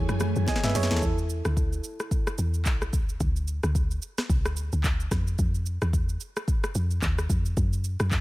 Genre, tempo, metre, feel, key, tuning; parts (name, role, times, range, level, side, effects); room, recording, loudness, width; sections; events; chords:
amapiano; 110 BPM; 4/4; swing 58% on 16ths; A4 = 441 Hz
tine electric piano; accompaniment; 0.0-1.2 s; E4 to G#5; -33 LUFS; right 2 dB; medium stereo tremolo
string machine, violas; sustained chords; 0.0-1.0 s; E3 to G#5; -34 LUFS; equal; phaser, ensemble chorus, sidechain pumping
deep log drum bass; bass; 0.0-8.2 s; B1 to G2; -26 LUFS; equal
afro-pop drum kit; drums; 0.1-8.2 s; handclaps, hi-hat, kick drum, rim click, shaker, snare drum; -27 LUFS; equal
bongos; percussion; 0.2-0.6 s; -39 LUFS; left 4 dB
digital ambience; -24 LUFS; side -18 dB against mid
0.0-1.0 A section; 1.0-8.2 B section
drop 0.0-1.0; drum fill 0.5-1.0
0.0 F#m9; 1.0 E5; 2.9 N.C.